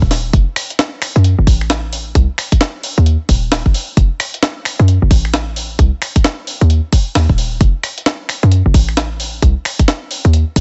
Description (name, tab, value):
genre	UK garage, two-step garage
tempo	132 BPM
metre	4/4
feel	swing 62% on 16ths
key	unclear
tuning	A4 = 440 Hz
part	short 808-style bass	bass	0.0-10.6 s	Eb1 to Gb2	-15 LUFS	equal	none
part	electronic kick drum	drums	0.0-10.6 s	none	-14 LUFS	equal	none
part	breakbeat sampler-style drum kit	drums	0.1-10.6 s	finger snaps, hi-hat, snare drum	-21 LUFS	equal	none
room	little or no reverb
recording	nothing above 8.0 kHz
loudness	-14 LUFS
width	mono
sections	0.0-10.6 A section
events	none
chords	none